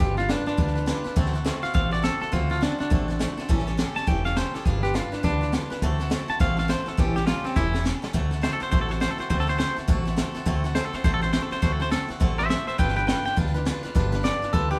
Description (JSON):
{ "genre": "rockabilly", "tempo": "206 BPM", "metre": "4/4", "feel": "swing 62% on 8ths", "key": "D mixolydian", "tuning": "A4 = 440 Hz", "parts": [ { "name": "twangy electric guitar", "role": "melody", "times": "0.0-14.8 s", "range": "C4 to A5", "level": "-30 LUFS", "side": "equal", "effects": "none" }, { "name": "picked swing-style acoustic guitar", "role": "accompaniment", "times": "0.0-14.8 s", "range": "A2 to B4", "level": "-34 LUFS", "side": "equal", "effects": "none" }, { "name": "upright bass", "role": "bass", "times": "0.0-14.8 s", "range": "E1 to D2", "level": "-30 LUFS", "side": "equal", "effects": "none" }, { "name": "jazz brush drum kit", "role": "drums", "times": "0.0-14.7 s", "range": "hi-hat, kick drum, snare drum", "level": "-28 LUFS", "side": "equal", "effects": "none" } ], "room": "moderate stone room reverb, RT60 1.4 s", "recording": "band playing live in one room", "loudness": "-25 LUFS", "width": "mono", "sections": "0.0-8.1 A section; 8.1-14.8 B section", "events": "drum fill 7.6-8.1; clean electric guitar solo 8.1-14.8", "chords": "0.0 G7; 1.2 D7; 3.5 A7; 4.7 G7; 5.8 D7; 7.0 A7; 8.1 D7; 12.8 G7", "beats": "| 0.00 0.29 0.58 0.87 | 1.17 1.46 1.75 2.04 | 2.33 2.62 2.91 3.20 | 3.49 3.78 4.08 4.37 | 4.66 4.95 5.24 5.53 | 5.82 6.11 6.40 6.69 | 6.98 7.27 7.56 7.85 | 8.14 8.43 8.72 9.01 | 9.30 9.59 9.88 10.17 | 10.46 10.75 11.04 11.34 | 11.62 11.92 12.21 12.50 | 12.79 13.08 13.37 13.66 | 13.95 14.24 14.53" }